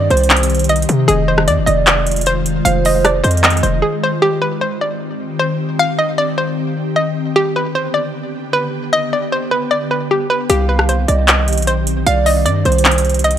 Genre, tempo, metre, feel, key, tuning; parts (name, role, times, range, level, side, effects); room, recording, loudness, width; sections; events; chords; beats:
hip hop, trap; 153 BPM; 4/4; half-time; C harmonic minor; A4 = 440 Hz
hollow square pluck; melody; 0.0-13.4 s; G4 to F5; -17 LUFS; equal; chorus
hollow clarinet-like synth lead; second line; 0.0-3.8, 10.5-13.2 s; C5 to F5; -21 LUFS; right 6 dB; chorus, tape echo
ethereal airy pad; sustained chords; 0.0-13.4 s; D3 to G4; -21 LUFS; left 2 dB; ensemble chorus, built-in reverb
hard-hitting 808-style bass; bass; 0.0-3.8, 10.5-13.4 s; F1 to C3; -16 LUFS; equal
trap drum kit; drums; 0.1-3.7, 10.5-13.4 s; handclaps, hi-hat, rim click; -15 LUFS; equal; overdrive
light reverb, digital ambience; -13 LUFS; side -10 dB against mid
0.0-4.2 A section; 4.2-13.4 A section
break 3.8-4.2
0.0 Cm; 1.1 Fm7; 4.2 Cm; 7.4 G; 10.5 Cm
0.30 0.69 | 1.08 1.48 1.87 2.26 | 2.65 3.04 3.44 3.83 | 4.22 4.61 5.01 5.40 | 5.79 6.18 6.58 6.97 | 7.36 7.75 8.14 8.54 | 8.93 9.32 9.71 10.10 | 10.50 10.89 11.28 11.67 | 12.06 12.46 12.85 13.24